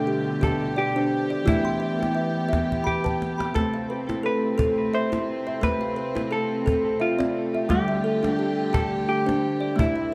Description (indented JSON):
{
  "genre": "world meditative, meditative tuned percussion",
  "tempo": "87 BPM",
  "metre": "3/4",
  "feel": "swing 55% on 16ths",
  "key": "A minor",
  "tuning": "A4 = 439 Hz",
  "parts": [
    { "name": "vintage hollow-body jazz guitar", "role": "melody", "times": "0.0-10.1 s", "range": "E4 to C5", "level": "-31 LUFS", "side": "equal", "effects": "shimmer reverb, tape echo" },
    { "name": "rich chamber string section", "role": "sustained chords", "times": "0.0-10.1 s", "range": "B2 to G4", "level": "-30 LUFS", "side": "equal", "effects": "shimmer reverb" },
    { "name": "kalimba", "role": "arpeggios", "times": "0.0-10.1 s", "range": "G3 to C6", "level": "-29 LUFS", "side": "equal", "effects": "shimmer reverb, tape echo" },
    { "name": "cajon", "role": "percussion", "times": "0.4-10.0 s", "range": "none", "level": "-30 LUFS", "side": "equal", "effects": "none" }
  ],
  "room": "wet echo chamber reverb, RT60 1.6 s, small room ambience",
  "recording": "dark, warm production",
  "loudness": "-24 LUFS",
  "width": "mono",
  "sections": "0.0-10.1 A section",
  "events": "drum fill 2.7-3.6",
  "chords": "0.0 G; 1.5 Em; 3.6 Am; 7.7 G5"
}